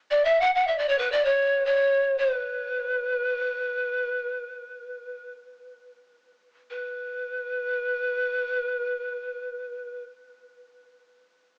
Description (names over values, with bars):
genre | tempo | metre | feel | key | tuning
world meditative, free-time meditation music | free time | none | none | B minor | A4 = 440 Hz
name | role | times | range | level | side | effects
breathy pan flute | solo | 0.1-10.0 s | B4 to F#5 | -27 LUFS | equal | analog delay
room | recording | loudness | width
wet booth ambience, RT60 0.2 s | home recording on cassette, small speaker sound | -26 LUFS | mono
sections
0.0-6.7 A section; 6.7-11.2 B section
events
none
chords
none